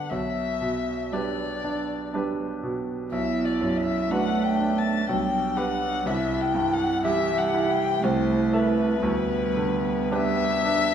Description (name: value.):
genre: classical, slow romantic movement for piano quartet.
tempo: 60 BPM.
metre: 3/4.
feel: rubato.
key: G major.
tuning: A4 = 440 Hz.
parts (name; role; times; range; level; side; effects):
dark violin; melody; 0.0-10.9 s; B4 to A5; -27 LUFS; left 6 dB; none.
bright concert grand piano; accompaniment; 0.0-10.9 s; B1 to E5; -27 LUFS; right 2 dB; none.
rich cello; second line; 1.1-10.9 s; E3 to B3; -28 LUFS; right 6 dB; none.
warm viola; accompaniment; 1.1-10.9 s; B3 to G4; -30 LUFS; right 2 dB; none.
room: wet recital hall reverb, RT60 1.5 s.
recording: heard from further back in the room.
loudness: -22 LUFS.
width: side -8 dB against mid.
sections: 0.0-10.9 A section.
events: none.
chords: 0.1 G/B; 3.1 Bm; 5.1 G/B; 6.1 C; 8.1 Am/C; 9.0 G/D.